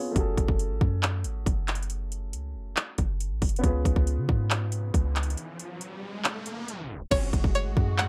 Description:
hip hop, trap; 138 BPM; 4/4; half-time; F# harmonic minor; A4 = 442 Hz
warm baby grand piano; accompaniment; 0.0-7.1 s; A3 to C#5; -38 LUFS; equal; low-pass filter
warm 808-style bass; bass; 0.2-8.1 s; F#1 to C#3; -30 LUFS; equal
trap drum kit; drums; 0.2-8.1 s; crash cymbal, handclaps, hi-hat, kick drum; -29 LUFS; equal; overdrive
riser; sound effects; 4.7-7.1 s; -42 LUFS; equal
string-like resonator pluck; melody; 7.1-8.1 s; C#5 to F#5; -30 LUFS; equal; chorus, phaser, low-pass filter
muted studio string section; sustained chords; 7.1-8.1 s; A2 to F#4; -39 LUFS; equal
little or no reverb; tape stop; -28 LUFS; mono
0.0-7.1 A section
break 0.0, 5.4-7.1; riser 4.7-7.1; tape stop 6.7-7.1
0.2 F#madd9; 3.6 C#7; 7.1 F#madd9
| 0.16 0.59 1.03 1.46 | 1.90 2.33 2.77 3.20 | 3.64 4.07 4.51 4.94 | 5.38 5.81 6.25 6.68 | 7.12 7.55 7.99

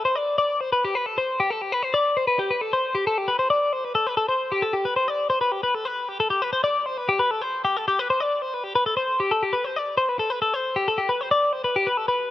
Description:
rock; 269 BPM (eighths); 7/8; straight; G major; A4 = 438 Hz
twelve-string electric guitar; solo; 0.0-12.3 s; G4 to D5; -21 LUFS; left 2 dB
moderate lush hall reverb, RT60 2.4 s; rough home demo mix; -21 LUFS; side -14 dB against mid
0.4-12.3 A section
0.15 | 0.38 0.60 0.82 1.05 1.27 1.49 1.72 | 1.94 2.16 2.39 2.61 2.83 3.06 3.28 | 3.51 3.73 3.95 4.18 4.40 4.62 4.85 | 5.07 5.29 5.52 5.74 5.97 6.19 6.41 | 6.64 6.86 7.08 7.31 7.53 7.75 7.98 | 8.20 8.42 8.64 8.87 9.09 9.31 9.54 | 9.76 9.98 10.20 10.43 10.65 10.87 11.09 | 11.32 11.54 11.76 11.98 12.21

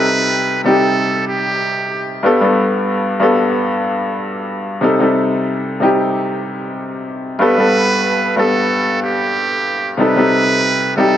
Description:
hip hop; 93 BPM; 4/4; swing 54% on 16ths; G major; A4 = 441 Hz
trumpet with metal mute; melody; 0.0-2.2, 7.4-11.2 s; G4 to B4; -17 LUFS; right 3 dB; high-pass filter, low-pass filter, ping-pong delay
bright upright piano; accompaniment; 0.0-11.2 s; G2 to A4; -15 LUFS; left 1 dB; cassette tape, high-pass filter, low-pass filter
light reverb, small room ambience; -13 LUFS; side -10 dB against mid
0.0-11.2 A section
0.0 Cm6; 2.2 Gadd9; 4.8 Cm6; 7.4 Gadd9; 10.0 Cm6
0.31 0.96 1.60 | 2.25 2.89 3.54 4.18 | 4.83 5.47 6.12 6.76 | 7.41 8.05 8.70 9.34 | 9.99 10.63

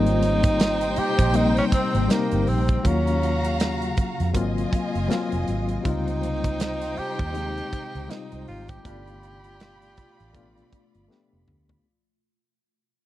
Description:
lush 1970s-style soul; 80 BPM; 4/4; swing 58% on 16ths; Ab major; A4 = 440 Hz
breathy tenor saxophone; melody; 0.0-11.1 s; Bb3 to G4; -28 LUFS; equal
warm studio violin section; second line; 0.0-11.8 s; Eb4 to B5; -32 LUFS; right 2 dB
barky reed electric piano; accompaniment; 0.0-11.9 s; Gb3 to G4; -27 LUFS; left 4 dB; overdrive, fast tremolo
granular cloud pad; sustained chords; 0.0-11.8 s; B2 to F5; -34 LUFS; equal; built-in reverb
vintage muted fingered electric bass; bass; 0.0-11.8 s; F1 to F2; -26 LUFS; right 1 dB
modern studio drum kit; drums; 0.1-11.8 s; hi-hat, kick drum, snare drum, toms; -24 LUFS; right 1 dB
mellow trombone section; stabs; 8.8-9.1 s; B2 to D4; -52 LUFS; right 14 dB
light reverb; dry, close 1970s-style studio recording; -21 LUFS; side -14 dB against mid
0.0-11.8 A section
fade-out 0.0-11.8; band accent 8.8-11.8; drum fill 11.1-11.8
0.0 Abmaj9; 2.8 Ebm9; 4.3 Ab13; 5.8 Dbmaj9#11; 8.8 G9
0.60 1.35 2.10 | 2.85 3.60 4.35 5.10 | 5.85 6.60 7.35 8.10 | 8.85 9.60 10.35 11.10

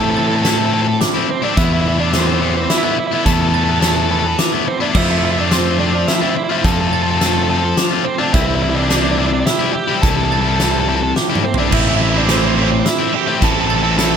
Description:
post-rock; 106 BPM; 3/4; straight; A minor; A4 = 440 Hz
octave-fuzz lead guitar; melody; 0.0-14.2 s; C4 to A4; -20 LUFS; right 4 dB; distortion, digital delay
twelve-string electric guitar; arpeggios; 0.0-14.2 s; E2 to G4; -25 LUFS; right 2 dB; digital delay
overdriven electric guitar; riff; 0.0-14.2 s; A2 to F4; -19 LUFS; left 9 dB
fuzz fingered electric bass; bass; 0.0-14.2 s; A1 to A2; -20 LUFS; equal; overdrive
glockenspiel with brass mallets; arpeggios; 0.2-14.2 s; D6 to A6; -27 LUFS; right 14 dB; digital delay
huge arena drum kit; drums; 0.4-14.1 s; crash cymbal, hi-hat, kick drum, snare drum, toms; -20 LUFS; equal
distorted electric guitar; riff; 11.7-14.2 s; A2 to E4; -20 LUFS; right 17 dB; overdrive
small room ambience; -13 LUFS; side -7 dB against mid
0.0-14.2 A section
drum fill 11.2-11.7
0.0 Am; 1.6 Esus4; 5.0 Fmaj7; 8.3 C6; 11.7 Am
0.45 1.01 | 1.57 2.13 2.70 | 3.26 3.82 4.39 | 4.95 5.51 6.08 | 6.64 7.21 7.77 | 8.34 8.90 9.46 | 10.03 10.60 11.16 | 11.72 12.29 12.86 | 13.42 13.99

